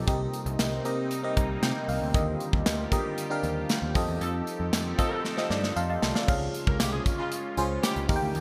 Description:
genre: 1980s-style pop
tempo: 116 BPM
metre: 4/4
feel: straight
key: unclear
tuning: A4 = 440 Hz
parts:
  - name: FM electric piano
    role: accompaniment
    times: 0.0-8.4 s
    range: C3 to C6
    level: -33 LUFS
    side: equal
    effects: chorus, phaser
  - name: sweeping resonant pad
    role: sustained chords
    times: 0.0-8.4 s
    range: C3 to A4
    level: -38 LUFS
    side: equal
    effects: chorus
  - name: overdriven picked electric bass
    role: bass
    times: 0.0-8.4 s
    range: C2 to C3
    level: -34 LUFS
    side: equal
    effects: none
  - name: modern studio drum kit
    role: drums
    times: 0.1-8.4 s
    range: crash cymbal, hi-hat, kick drum, snare drum, tambourine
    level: -31 LUFS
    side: equal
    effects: gated reverb
  - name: tambourine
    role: percussion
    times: 0.1-8.4 s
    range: none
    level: -49 LUFS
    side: equal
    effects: none
  - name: clear horn section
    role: stabs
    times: 4.2-8.0 s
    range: Db3 to Bb4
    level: -38 LUFS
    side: equal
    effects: digital delay
room: moderate plate reverb, RT60 3.2 s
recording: bright 1980s-style digital production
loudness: -28 LUFS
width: mono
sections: 0.0-6.3 A section; 6.3-8.4 B section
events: FM electric piano fill 1.1-2.1, 5.2-6.3; band accent 4.2-6.3; drum fill 5.2-6.3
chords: 0.1 Cm7; 2.1 Ebmaj7; 4.0 F7; 6.3 Db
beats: | 0.07 0.59 1.11 1.63 | 2.14 2.66 3.18 3.69 | 4.21 4.73 5.25 5.76 | 6.28 6.80 7.32 7.83 | 8.35

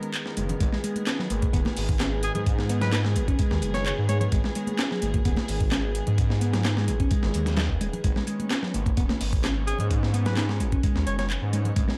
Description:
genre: breakbeat, breaks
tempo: 129 BPM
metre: 4/4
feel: straight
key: G# minor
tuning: A4 = 436 Hz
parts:
  - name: rich chamber string section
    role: sustained chords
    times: 0.0-12.0 s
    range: D#3 to A#4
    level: -37 LUFS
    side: equal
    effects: sidechain pumping
  - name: picked electric bass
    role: riff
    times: 0.0-11.9 s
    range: F#3 to D#4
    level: -34 LUFS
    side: equal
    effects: overdrive, vintage 12-bit sampler grit
  - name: garage drum kit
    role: drums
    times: 0.0-11.9 s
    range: handclaps, hi-hat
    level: -38 LUFS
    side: equal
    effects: overdrive
  - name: breakbeat sampler-style drum kit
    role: drums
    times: 0.1-12.0 s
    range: hi-hat, kick drum, snare drum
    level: -29 LUFS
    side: equal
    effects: none
  - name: phased detuned saw bass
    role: bass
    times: 0.4-11.8 s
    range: D#1 to G#2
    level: -29 LUFS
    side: equal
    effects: phaser
  - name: congas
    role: percussion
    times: 0.5-11.7 s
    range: none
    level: -36 LUFS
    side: equal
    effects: none
  - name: bright alto saxophone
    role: melody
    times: 2.2-4.3, 9.7-11.3 s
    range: G#4 to C#5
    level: -36 LUFS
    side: equal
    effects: old record sound, digital delay
room: light reverb, digital ambience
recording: dark, warm production, vinyl crackle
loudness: -25 LUFS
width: mono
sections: 0.0-12.0 A section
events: break 0.0-0.6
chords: 0.0 G#m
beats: 0.14 | 0.60 1.07 1.53 2.00 | 2.46 2.93 3.39 3.86 | 4.32 4.79 5.25 5.72 | 6.18 6.65 7.12 7.58 | 8.04 8.51 8.97 9.44 | 9.91 10.37 10.84 11.30 | 11.77

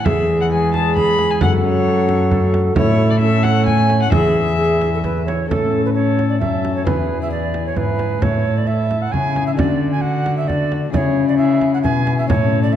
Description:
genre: classical, renaissance-style consort dance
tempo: 133 BPM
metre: 3/4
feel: straight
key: unclear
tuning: A4 = 440 Hz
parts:
  - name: dark violin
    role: melody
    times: 0.0-12.8 s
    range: F#4 to B5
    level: -24 LUFS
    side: left 4 dB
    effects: none
  - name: concert harp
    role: accompaniment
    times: 0.0-12.8 s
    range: E2 to B4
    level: -22 LUFS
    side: left 8 dB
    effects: none
  - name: mellow tenor recorder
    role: second line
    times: 0.1-12.8 s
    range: G#4 to G#5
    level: -22 LUFS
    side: right 4 dB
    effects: none
  - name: warm trombone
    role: accompaniment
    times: 0.1-12.8 s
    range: C#4 to G#4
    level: -24 LUFS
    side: left 3 dB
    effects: none
  - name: dark cello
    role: bass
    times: 0.1-12.8 s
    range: E2 to D3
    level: -19 LUFS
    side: right 2 dB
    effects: none
  - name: frame drum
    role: percussion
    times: 0.1-12.5 s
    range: none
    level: -23 LUFS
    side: right 2 dB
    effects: none
room: wet recital hall reverb, RT60 1.6 s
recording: dark, warm production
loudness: -14 LUFS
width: side -10 dB against mid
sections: 0.0-5.5 A section; 5.5-12.8 B section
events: none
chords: 0.0 E; 1.4 F#m; 2.8 A; 4.1 E; 5.5 A; 6.9 E; 8.2 A; 9.6 D; 10.9 C#m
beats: | 0.05 0.51 0.96 | 1.41 1.86 2.31 | 2.77 3.22 3.67 | 4.13 4.58 5.04 | 5.50 5.96 6.41 | 6.86 7.32 7.76 | 8.22 8.67 9.12 | 9.57 10.03 10.48 | 10.93 11.38 11.84 | 12.29 12.74

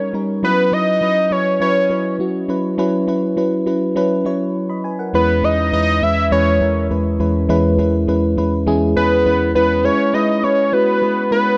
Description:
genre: pop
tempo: 102 BPM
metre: 4/4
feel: straight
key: unclear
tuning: A4 = 442 Hz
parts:
  - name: fat analog lead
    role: melody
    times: 0.0-11.6 s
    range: B4 to E5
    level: -19 LUFS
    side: equal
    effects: none
  - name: mellow FM electric piano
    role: accompaniment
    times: 0.0-11.6 s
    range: E2 to B5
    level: -19 LUFS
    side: equal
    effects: chorus, phaser
room: light reverb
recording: none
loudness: -17 LUFS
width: mono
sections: 0.4-9.8 A section; 9.8-11.6 B section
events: none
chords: 0.4 F#7sus4; 5.1 C#m7/E; 9.8 C#m7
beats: | 0.43 1.02 1.61 2.20 | 2.79 3.38 3.96 4.55 | 5.14 5.73 6.32 6.91 | 7.49 8.08 8.67 9.26 | 9.85 10.44 11.02

